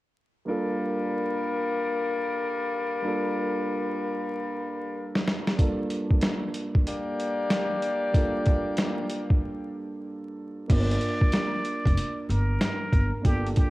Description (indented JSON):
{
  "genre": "hip hop, boom-bap hip-hop",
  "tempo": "94 BPM",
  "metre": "4/4",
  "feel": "swing 62% on 16ths",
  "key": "G minor",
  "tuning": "A4 = 443 Hz",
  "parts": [
    { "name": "dark concert grand piano", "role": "accompaniment", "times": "0.5-13.7 s", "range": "G2 to Bb4", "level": "-32 LUFS", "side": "right 2 dB", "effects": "high-pass filter, low-pass filter" },
    { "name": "warm saxophone section", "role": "stabs", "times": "0.5-9.4 s", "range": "G3 to D5", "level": "-29 LUFS", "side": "left 3 dB", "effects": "high-pass filter, low-pass filter, analog delay" },
    { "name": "boom bap sampler-style drum kit", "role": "drums", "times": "5.2-13.7 s", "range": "crash cymbal, hi-hat, kick drum, snare drum", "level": "-24 LUFS", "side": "equal", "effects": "cassette tape" },
    { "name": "trumpet with plunger mute", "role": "melody", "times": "10.7-13.7 s", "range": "G4 to D5", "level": "-32 LUFS", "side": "equal", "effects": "high-pass filter, low-pass filter, cassette tape" },
    { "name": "upright bass", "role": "bass", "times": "10.7-13.5 s", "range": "F1 to G1", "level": "-26 LUFS", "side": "equal", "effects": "none" }
  ],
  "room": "light reverb, studio reverb",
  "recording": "home recording on cassette, vinyl crackle",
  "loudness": "-24 LUFS",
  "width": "side -18 dB against mid",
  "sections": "0.5-10.7 A section; 10.7-13.7 B section",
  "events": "drum fill 4.3-5.6; break 9.4-10.7",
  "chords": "0.5 Gm7"
}